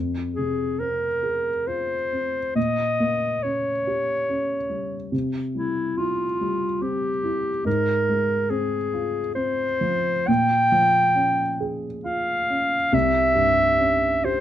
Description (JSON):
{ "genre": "classical, romantic duo for clarinet and grand piano", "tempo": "69 BPM", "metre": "3/4", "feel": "uneven beats, rubato", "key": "F minor", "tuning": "A4 = 442 Hz", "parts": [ { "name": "dark baby grand piano", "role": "accompaniment", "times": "0.0-14.4 s", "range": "C2 to Ab4", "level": "-26 LUFS", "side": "equal", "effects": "none" }, { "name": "clear clarinet", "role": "melody", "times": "0.4-14.4 s", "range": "E4 to G5", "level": "-22 LUFS", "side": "equal", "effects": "none" } ], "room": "light reverb", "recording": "dark, warm production", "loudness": "-20 LUFS", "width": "side -11 dB against mid", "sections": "0.0-14.4 A section", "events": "none", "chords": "0.0 Fm; 2.6 Gdim/Bb; 5.1 C; 7.7 Fm/Ab; 10.3 Bbm7; 12.9 C(b9)" }